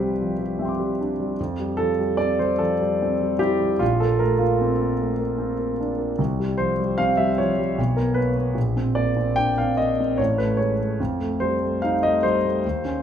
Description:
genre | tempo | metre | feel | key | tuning
classical, impressionist solo piano | 75 BPM | 3/4 | rubato | unclear | A4 = 440 Hz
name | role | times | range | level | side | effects
warm concert grand piano | solo | 0.0-13.0 s | A1 to D6 | -20 LUFS | equal | none
room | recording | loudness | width
moderate recital hall reverb, RT60 1.5 s | minimal, uncompressed stereo recording | -20 LUFS | side -8 dB against mid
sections
0.0-13.0 A section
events
none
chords
0.0 Cadd9; 1.4 Fmaj9; 3.8 Bbadd9; 6.2 C5; 7.8 Bsus2; 8.6 Bbadd9; 10.2 A; 11.0 F9

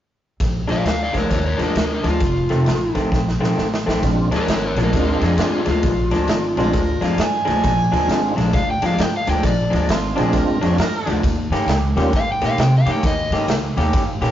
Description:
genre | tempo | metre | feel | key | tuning
electric blues shuffle | 133 BPM | 4/4 | swing 63% on 8ths | Bb mixolydian | A4 = 440 Hz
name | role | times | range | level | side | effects
upright bass | bass | 0.4-14.3 s | F1 to C3 | -21 LUFS | equal | none
raw garage drum kit | drums | 0.4-14.3 s | kick drum, ride cymbal, snare drum | -22 LUFS | right 1 dB | none
overdriven semi-hollow guitar | melody | 0.7-13.5 s | D4 to G5 | -22 LUFS | left 2 dB | none
electric guitar through a small old amp | riff | 0.7-14.3 s | F2 to G4 | -23 LUFS | left 1 dB | spring reverb
tonewheel organ | accompaniment | 4.0-12.1 s | G3 to F4 | -21 LUFS | right 1 dB | slow rotary speaker, overdrive, chorus vibrato
mellow harmonica | second line | 6.6-11.2 s | F4 to Ab5 | -24 LUFS | right 4 dB | none
room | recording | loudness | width
light reverb | rough rehearsal-room recording, warm saturation, nothing above 7.5 kHz | -16 LUFS | side -11 dB against mid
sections
0.4-4.0 A section; 4.0-14.3 B section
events
drum fill 3.1-4.0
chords
0.4 Bb7; 2.2 F7; 4.0 Bb7; 11.2 Eb7

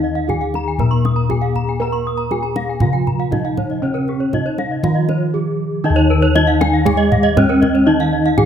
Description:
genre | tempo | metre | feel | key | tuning
Balinese gamelan | 119 BPM | 4/4 | straight | Eb slendro | A4 = 441 Hz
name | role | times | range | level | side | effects
gamelan-type bronze metallophone | melody | 0.0-8.5 s | Db4-45c to Bb4+25c | -20 LUFS | equal | none
gamelan-type bronze metallophone | accompaniment | 0.0-8.5 s | Db3-45c to Bb3+25c | -23 LUFS | right 3 dB | none
gamelan-type bronze metallophone | arpeggios | 0.0-8.5 s | Ab4-35c to Eb6 | -23 LUFS | left 5 dB | none
gamelan-type bronze metallophone | arpeggios | 0.0-8.4 s | Bb4+25c to Db6-45c | -24 LUFS | right 7 dB | tape echo
gamelan-type bossed gongs | bass | 0.0-8.5 s | Eb2 to Bb4+25c | -19 LUFS | left 1 dB | none
kendang | percussion | 0.3-8.5 s | none | -22 LUFS | equal | none
room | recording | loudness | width
light reverb | close, detailed microphones | -14 LUFS | side -8 dB against mid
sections
0.0-8.5 A section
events
none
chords
none

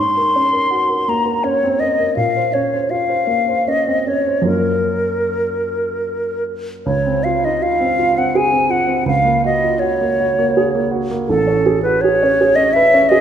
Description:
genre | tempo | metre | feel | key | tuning
classical, impressionist duo for flute and grand piano | 73-85 BPM | 3/4 | rubato | unclear | A4 = 440 Hz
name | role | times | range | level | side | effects
hollow silver concert flute | melody | 0.0-13.2 s | A4 to C6 | -16 LUFS | left 1 dB | none
dark grand piano | accompaniment | 0.0-13.2 s | A1 to C5 | -19 LUFS | right 3 dB | none
room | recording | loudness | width
moderate scoring stage reverb, RT60 1.9 s | minimal, uncompressed stereo recording | -14 LUFS | side -9 dB against mid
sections
0.0-6.9 A section; 6.9-13.2 B section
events
none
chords
0.0 Gbadd9/Ab; 2.2 Bbmadd9; 4.5 Gbmaj7; 6.9 Dbmaj9; 9.1 Gbmaj9/Db; 11.3 Amaj9

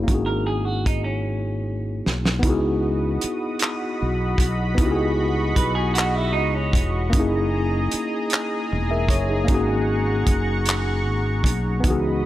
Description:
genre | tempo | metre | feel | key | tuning
slow six-eight R&B | 51 BPM (dotted quarters) | 6/8 | straight | C# dorian | A4 = 438 Hz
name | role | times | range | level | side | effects
tine electric piano | accompaniment | 0.0-12.3 s | E3 to E5 | -24 LUFS | left 1 dB | overdrive, medium stereo tremolo
mellow fretless electric bass | bass | 0.0-12.3 s | E1 to C#2 | -24 LUFS | equal | wide subtle chorus
warm soul drum kit | drums | 0.1-12.0 s | handclaps, hi-hat, kick drum, snare drum | -22 LUFS | equal | none
semi-hollow electric guitar | second line | 0.3-7.1 s | C#4 to B4 | -27 LUFS | right 3 dB | vibrato effect
lush unison pad | sustained chords | 2.4-12.3 s | F#4 to D#6 | -28 LUFS | equal | chorus
room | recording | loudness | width
small room ambience | none | -20 LUFS | side -14 dB against mid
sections
0.0-2.4 A section; 2.4-12.3 B section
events
drum fill 1.3-2.4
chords
0.1 G#9sus4; 2.4 C#m11; 7.1 F#13; 9.5 G#9sus4

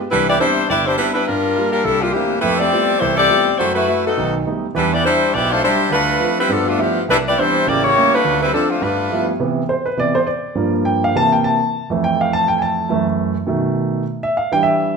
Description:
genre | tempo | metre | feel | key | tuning
jazz | 207 BPM | 4/4 | swing 60% on 8ths | C major | A4 = 440 Hz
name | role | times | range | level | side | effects
warm saxophone section | melody | 0.1-9.3 s | E3 to D5 | -15 LUFS | left 2 dB | none
warm concert grand piano | accompaniment | 0.1-15.0 s | G1 to A5 | -18 LUFS | right 2 dB | none
room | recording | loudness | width
wet large studio reverb, RT60 1.2 s | minimal, uncompressed stereo recording | -15 LUFS | side -5 dB against mid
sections
0.1-9.4 A section; 9.4-15.0 B section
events
grand piano solo 9.4-15.0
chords
0.1 Cmaj9; 1.3 Gm7; 1.8 C13; 2.4 Fmaj9#11; 3.6 Am69/F#; 4.2 B7b13; 4.7 Em7; 5.9 Dm7; 6.5 G13; 7.1 Cmaj9; 7.7 A7b9; 8.2 Dm7; 8.8 G13; 9.4 Cmaj9; 10.6 Gm7; 11.1 C6; 11.7 Fmaj7; 12.9 F#m7; 13.5 B7; 14.0 Em7

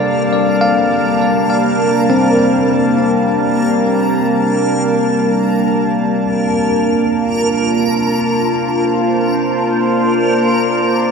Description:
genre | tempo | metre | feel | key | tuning
ambient | free time | none | none | unclear | A4 = 439 Hz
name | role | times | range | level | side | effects
warbly tape-like pad | sustained chords | 0.0-11.1 s | G3 to A5 | -14 LUFS | equal | chorus, built-in reverb
bell-like tine electric piano | arpeggios | 0.0-11.1 s | C4 to F5 | -20 LUFS | left 1 dB | ping-pong delay
analog drone | drone | 0.0-11.1 s | C3 | -28 LUFS | right 1 dB | chorus
backwards swelling texture | texture | 0.0-11.1 s | Bb4 | -20 LUFS | equal | built-in reverb
room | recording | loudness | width
wet huge ambient reverb, RT60 8.7 s | none | -12 LUFS | side -5 dB against mid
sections
0.0-11.1 A section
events
fade-out on synth drone 0.0-11.1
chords
0.0 Gm9; 6.2 Bbmaj9

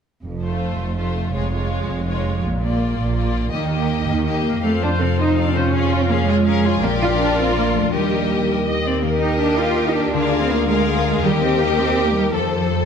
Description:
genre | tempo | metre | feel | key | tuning
cinematic | 109 BPM (dotted quarters) | 6/8 | straight | unclear | A4 = 440 Hz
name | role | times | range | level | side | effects
dark symphonic cello section | bass | 0.2-12.9 s | F2 to F4 | -22 LUFS | right 2 dB | none
rich symphonic double bass section | bass | 0.2-12.9 s | F1 to F2 | -23 LUFS | right 3 dB | none
warm chamber violin section | melody | 0.4-12.8 s | C5 to F5 | -30 LUFS | left 6 dB | none
warm symphonic violin section | second line | 0.4-12.9 s | C4 to Bb4 | -27 LUFS | left 4 dB | none
clear symphonic viola section | accompaniment | 0.4-12.9 s | Ab3 to Eb5 | -24 LUFS | equal | none
mellow French horn section | sustained chords | 4.6-12.9 s | F4 to D5 | -25 LUFS | left 3 dB | none
concert harp | arpeggios | 4.6-12.9 s | F2 to A4 | -25 LUFS | left 10 dB | none
room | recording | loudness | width
moderate scoring stage reverb, RT60 1.9 s | none | -17 LUFS | side -7 dB against mid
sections
0.2-4.6 A section; 4.6-12.9 B section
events
none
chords
0.2 F; 1.3 Db/F; 2.4 Bb; 3.5 Eb; 4.6 F; 5.7 Db/F; 6.8 Bb; 7.9 Eb; 10.1 Bb7/D; 11.2 Eb; 12.3 F

